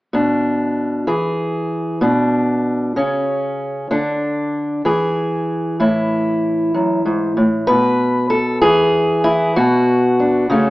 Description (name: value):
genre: folk, solo fingerstyle acoustic guitar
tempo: 64 BPM (dotted quarters)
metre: 6/8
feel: straight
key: B dorian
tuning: A4 = 440 Hz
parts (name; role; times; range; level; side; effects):
- fingerpicked steel-string acoustic guitar; solo; 0.1-10.7 s; F#2 to B4; -15 LUFS; equal; none
room: moderate stone room reverb, RT60 1.2 s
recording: band playing live in one room, AM radio sound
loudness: -15 LUFS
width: side -18 dB against mid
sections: 0.1-7.7 A section; 7.7-10.7 B section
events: none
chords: 0.1 Bm; 1.1 E; 2.0 Bm; 3.0 N.C.; 4.8 E; 5.8 A5; 7.7 N.C.; 9.6 Bm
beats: | 0.14 1.08 | 2.02 2.96 | 3.90 4.85 | 5.79 6.73 | 7.67 8.62 | 9.56 10.50